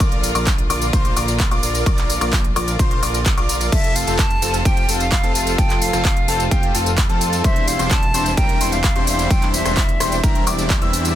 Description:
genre	EDM, festival progressive house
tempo	129 BPM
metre	4/4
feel	straight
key	unclear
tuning	A4 = 441 Hz
part	rich studio string section	sustained chords	0.0-11.1 s	C3 to F4	-30 LUFS	left 1 dB	sidechain pumping
part	dark baby grand piano	arpeggios	0.0-11.1 s	G5 to E6	-26 LUFS	left 4 dB	sidechain pumping, tape echo
part	supersaw chords	riff	0.0-11.1 s	G3 to E5	-24 LUFS	right 1 dB	lush chorus, sidechain pumping, tape echo
part	fat analog bass	bass	0.0-11.1 s	E1 to F2	-24 LUFS	equal	tube saturation, sidechain pumping
part	big-room dance drum kit	drums	0.0-11.1 s	crash cymbal, handclaps, hi-hat, rim click, tambourine	-23 LUFS	equal	none
part	electronic kick drum	drums	0.0-10.8 s	none	-18 LUFS	equal	none
part	bright silver concert flute	melody	3.7-10.4 s	E5 to A5	-25 LUFS	equal	tape echo
room	little or no reverb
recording	dense, heavily limited modern master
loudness	-15 LUFS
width	side -12 dB against mid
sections	0.0-11.2 A section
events	none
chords	0.0 Bb; 3.7 F; 7.4 Cadd9/E

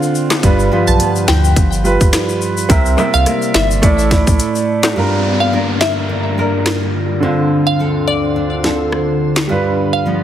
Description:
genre	dancehall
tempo	106 BPM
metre	4/4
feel	swing 56% on 16ths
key	unclear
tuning	A4 = 440 Hz
part	warm concert grand piano	accompaniment	0.0-10.2 s	D3 to E5	-18 LUFS	right 4 dB	none
part	nylon-string guitar	arpeggios	0.0-10.2 s	G2 to Bb4	-18 LUFS	left 1 dB	none
part	tube shaker and timbales	percussion	0.0-5.0 s	none	-24 LUFS	left 7 dB	none
part	island pop drum kit	drums	0.3-9.5 s	handclaps, hi-hat, kick drum, rim click, snare drum	-16 LUFS	equal	overdrive
part	sub bass with octave	bass	0.4-4.4 s	G1 to D2	-16 LUFS	equal	none
part	glassy wavetable pluck	melody	0.9-10.0 s	D5 to A5	-19 LUFS	equal	chorus, digital delay
part	glassy FM pad	sustained chords	5.6-10.2 s	D2 to C5	-20 LUFS	left 1 dB	ensemble chorus, built-in reverb, sidechain pumping
part	downlifter	sound effects	5.0-9.5 s	none	-24 LUFS	left 2 dB	none
room	light reverb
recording	heavily compressed radio sound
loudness	-12 LUFS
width	side -10 dB against mid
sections	0.0-5.0 A section; 5.0-10.2 B section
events	none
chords	0.4 G7; 2.7 C7; 3.8 Asus4; 5.0 Gm7; 7.2 Dm7; 9.5 G7

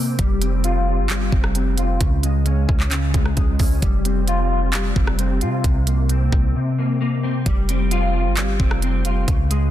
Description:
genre	hip hop, trap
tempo	132 BPM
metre	4/4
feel	half-time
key	F minor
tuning	A4 = 439 Hz
part	mellow electric guitar	arpeggios	0.0-9.7 s	C3 to F4	-22 LUFS	left 1 dB	ensemble chorus, low-pass filter, tape echo
part	hard-hitting 808-style bass	bass	0.2-9.7 s	F1 to C3	-20 LUFS	equal	none
part	trap drum kit	drums	0.2-9.6 s	handclaps, hi-hat, kick drum, rim click	-21 LUFS	equal	none
room	digital ambience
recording	dense, heavily limited modern master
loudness	-17 LUFS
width	side -12 dB against mid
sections	0.0-9.7 A section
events	break 0.0, 6.6-7.5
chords	0.2 Fsus2; 2.0 Db5; 3.8 Fsus2; 5.6 Bbsus2/C; 7.5 Fsus2

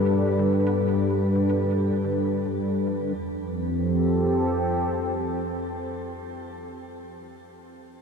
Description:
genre	ambient, sequencer-driven space music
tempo	109 BPM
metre	4/4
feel	straight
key	F lydian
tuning	A4 = 440 Hz
part	sweeping resonant pad	sustained chords	0.0-6.1 s	F3 to B4	-24 LUFS	equal	chorus, shimmer reverb
part	resonant blip pluck	riff	0.0-3.4 s	F2 to B3	-40 LUFS	left 1 dB	wide subtle chorus, tape echo, shimmer reverb
part	analog drone	bass	0.0-4.8 s	F2 to G2	-30 LUFS	equal	chorus
room	wet huge ambient reverb, RT60 7.9 s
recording	dark, warm production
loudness	-22 LUFS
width	side -6 dB against mid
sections	0.0-3.1 A section; 3.1-5.3 B section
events	fade-out on synth arpeggio sound 0.0-3.1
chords	0.0 G; 3.1 Fadd9

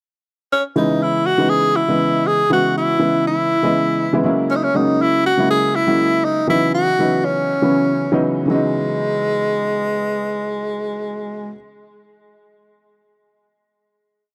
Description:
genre	jazz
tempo	120 BPM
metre	4/4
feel	swing 53% on 16ths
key	C# dorian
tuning	A4 = 441 Hz
part	breathy tenor saxophone	melody	0.5-11.5 s	G#3 to G#4	-20 LUFS	equal	none
part	warm concert grand piano	accompaniment	0.8-11.6 s	C#3 to D#5	-21 LUFS	equal	none
room	little or no reverb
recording	dry, close 1970s-style studio recording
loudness	-18 LUFS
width	mono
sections	0.5-8.5 A section; 8.5-12.5 final chord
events	none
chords	0.5 C#m7; 4.2 F#9; 6.5 C#m11

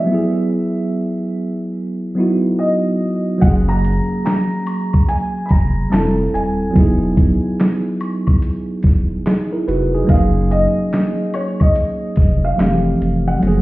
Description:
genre	lo-fi hip hop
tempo	72 BPM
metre	4/4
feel	swing 64% on 16ths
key	unclear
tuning	A4 = 440 Hz
part	felt-muted upright piano	melody	0.0-13.6 s	C#5 to B5	-23 LUFS	equal	low-pass filter, tape echo
part	tine electric piano	accompaniment	0.0-13.6 s	E3 to B4	-18 LUFS	right 1 dB	slow stereo tremolo, low-pass filter
part	warm sub bass	bass	3.4-13.6 s	D#1 to F#1	-19 LUFS	equal	none
part	dusty soul sampler-style drum kit	drums	3.4-13.6 s	handclaps, hi-hat, kick drum, snare drum	-14 LUFS	equal	vintage 12-bit sampler grit
part	egg shaker and woodblock	percussion	3.4-13.6 s	none	-33 LUFS	left 3 dB	none
room	light reverb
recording	heard muffled through a wall, stone room reverb, vinyl crackle, EQ, nothing above 7.8 kHz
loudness	-14 LUFS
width	side -18 dB against mid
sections	0.0-13.6 A section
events	kick muted 13.4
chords	0.1 Emaj7; 3.4 F#maj7; 5.9 Fmaj7; 6.8 Emaj7; 10.1 F#maj7; 12.6 Fmaj7

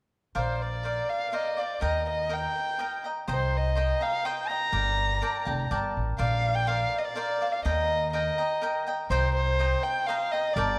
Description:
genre	mexican folk, mariachi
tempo	124 BPM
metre	3/4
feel	straight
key	Bb major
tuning	A4 = 440 Hz
part	cavaquinho	accompaniment	0.3-10.8 s	Bb4 to Bb5	-34 LUFS	equal	none
part	dark violin	melody	0.4-10.8 s	C5 to Bb5	-31 LUFS	equal	none
part	upright bass	bass	0.4-10.8 s	F1 to Eb2	-32 LUFS	equal	none
room	moderate recital hall reverb, RT60 1.7 s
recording	none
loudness	-28 LUFS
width	mono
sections	0.4-6.2 A section; 6.2-10.8 B section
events	none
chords	0.4 Bbadd9; 1.8 Eb; 3.3 Cm7; 4.7 Gmadd9; 6.2 Bbadd9; 7.7 Eb; 9.1 Cm7

